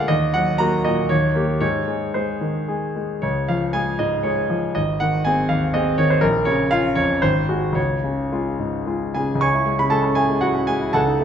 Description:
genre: classical, romantic character piece for solo piano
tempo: 106-124 BPM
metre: 3/4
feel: rubato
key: Db major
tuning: A4 = 436 Hz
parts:
  - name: clear concert grand piano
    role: solo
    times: 0.0-11.2 s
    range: Ab1 to C#6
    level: -18 LUFS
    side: equal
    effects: none
room: wet recital hall reverb, RT60 1.3 s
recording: none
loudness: -18 LUFS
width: side -8 dB against mid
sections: 0.0-9.4 A section; 9.4-11.2 B section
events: none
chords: 0.1 Ebm; 1.1 Eb7; 1.6 Ab; 3.2 Db; 4.8 Ab; 6.2 Bbm; 7.2 Ab7; 7.8 Db; 9.4 C#m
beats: | 0.11 0.60 1.10 | 1.62 2.15 2.68 | 3.23 3.75 4.25 | 4.76 5.25 5.74 | 6.23 6.72 7.23 | 7.76 8.33 8.89 | 9.43 9.94 10.45 | 10.95

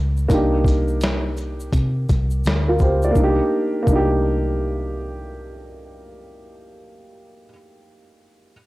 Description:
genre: lo-fi hip hop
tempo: 84 BPM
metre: 4/4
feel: swing 62% on 16ths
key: C minor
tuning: A4 = 440 Hz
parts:
  - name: dark upright piano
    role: accompaniment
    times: 0.0-8.5 s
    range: Bb3 to D5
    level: -22 LUFS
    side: right 1 dB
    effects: cassette tape
  - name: vintage muted fingered electric bass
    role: bass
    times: 0.0-7.5 s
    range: C2 to C3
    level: -22 LUFS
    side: equal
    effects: none
  - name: tube shaker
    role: percussion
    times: 0.2-4.1 s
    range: none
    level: -47 LUFS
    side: left 3 dB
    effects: none
  - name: boom bap sampler-style drum kit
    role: drums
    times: 0.3-4.1 s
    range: hi-hat, kick drum, shaker, snare drum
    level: -20 LUFS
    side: equal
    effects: vintage 12-bit sampler grit
room: little or no reverb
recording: dry, gritty hardware recording, cassette tape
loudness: -17 LUFS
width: side -19 dB against mid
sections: 0.0-3.2 A section; 3.2-6.0 B section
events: none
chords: 0.0 Cm9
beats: | 0.30 1.01 1.73 2.44 | 3.16 3.87 4.58 5.30

